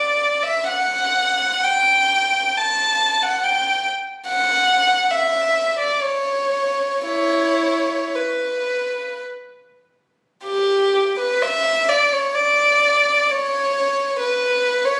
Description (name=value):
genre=classical, free, expressive piece for unaccompanied violin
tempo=42-72 BPM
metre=3/4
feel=rubato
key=E dorian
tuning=A4 = 440 Hz
part: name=warm violin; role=solo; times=0.0-15.0 s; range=E4 to A5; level=-19 LUFS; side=equal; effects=none
room=moderate recital hall reverb, RT60 1.7 s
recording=recorded on a phone in the room, studio ambience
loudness=-19 LUFS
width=mono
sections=0.0-10.5 A section; 10.5-15.0 A section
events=none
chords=none